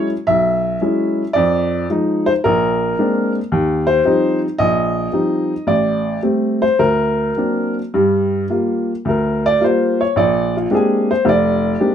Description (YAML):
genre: solo jazz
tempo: 110 BPM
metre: 4/4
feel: swing 69% on 8ths, rubato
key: unclear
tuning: A4 = 440 Hz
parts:
  - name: warm upright piano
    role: solo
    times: 0.0-11.9 s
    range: F1 to E5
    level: -14 LUFS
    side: equal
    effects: none
room: moderate studio ambience, RT60 0.5 s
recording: minimal, uncompressed stereo recording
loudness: -14 LUFS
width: side -8 dB against mid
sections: 0.0-7.9 A section; 7.9-11.9 B section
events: upright piano solo 7.9-11.9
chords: 0.0 E69; 1.4 Fm7; 2.5 Bb9; 3.5 Eb69; 5.7 Amadd11; 6.8 D7b13; 7.9 Gm7; 10.2 Bb13